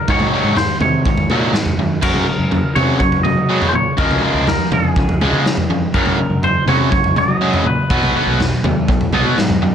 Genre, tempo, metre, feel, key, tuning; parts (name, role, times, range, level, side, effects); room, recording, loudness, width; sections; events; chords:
indie rock; 122 BPM; 4/4; straight; A4 = 440 Hz
twangy electric guitar; melody; 0.0-8.6 s; Ab4 to Eb5; -20 LUFS; right 1 dB; phaser
raw garage guitar; riff; 0.0-9.7 s; Gb2 to Cb4; -17 LUFS; equal; overdrive
growling fingered electric bass; bass; 0.1-9.7 s; Cb2 to Gb3; -21 LUFS; equal; overdrive
raw garage drum kit; drums; 0.1-9.6 s; crash cymbal, kick drum, snare drum, toms; -18 LUFS; equal
little or no reverb; -13 LUFS; side -8 dB against mid
0.0-2.0 A section; 2.0-9.7 A section
0.1 Ab7sus4; 2.0 Gb; 4.0 Db6; 5.9 Gb6; 7.9 Cb